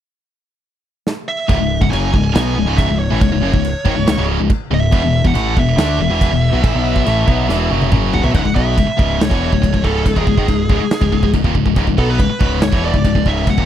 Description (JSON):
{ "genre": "heavy metal", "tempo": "140 BPM", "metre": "4/4", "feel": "straight", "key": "C# phrygian", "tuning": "A4 = 440 Hz", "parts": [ { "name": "big rock drum kit", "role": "drums", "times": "1.1-13.7 s", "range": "china cymbal, kick drum, snare drum, toms", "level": "-18 LUFS", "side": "right 1 dB", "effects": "none" }, { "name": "high-gain lead guitar", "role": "melody", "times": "1.3-13.7 s", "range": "G#4 to G#5", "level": "-21 LUFS", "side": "right 3 dB", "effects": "distortion, slapback echo" }, { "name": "heavy high-gain guitar", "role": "riff", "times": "1.5-13.7 s", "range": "C#2 to D4", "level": "-22 LUFS", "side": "right 14 dB", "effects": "distortion" }, { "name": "tight distorted guitar", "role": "riff", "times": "1.5-13.7 s", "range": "C#2 to D4", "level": "-19 LUFS", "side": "left 10 dB", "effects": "distortion" }, { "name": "growling picked electric bass", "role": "bass", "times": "1.5-13.7 s", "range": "C#1 to D2", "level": "-19 LUFS", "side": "right 1 dB", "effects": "overdrive" } ], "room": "little or no reverb", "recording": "dry, close 1970s-style studio recording", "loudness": "-13 LUFS", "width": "side -10 dB against mid", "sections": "0.0-1.5 A section; 1.5-8.3 B section; 8.3-13.7 C section", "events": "drum fill 1.1-1.5, 7.5-8.3", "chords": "0.0 N.C.; 1.5 C#m; 4.9 E5; 8.3 C#m" }